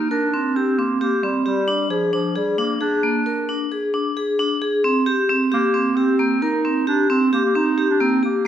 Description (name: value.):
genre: contemporary instrumental, chamber music in an uneven meter.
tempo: 133 BPM.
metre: 7/4.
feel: straight.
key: C minor.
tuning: A4 = 440 Hz.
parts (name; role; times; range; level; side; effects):
warm clarinet; melody; 0.0-8.5 s; F3 to Eb4; -21 LUFS; right 3 dB; none.
vibraphone with hard mallets; arpeggios; 0.0-8.5 s; Bb3 to Bb4; -19 LUFS; left 1 dB; none.
room: wet recital hall reverb, RT60 1.5 s.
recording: recorded in a church or concert hall.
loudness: -17 LUFS.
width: side -10 dB against mid.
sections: 0.0-8.5 A section.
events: none.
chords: 0.0 C7(no3); 1.7 Bb7; 4.8 Cm7.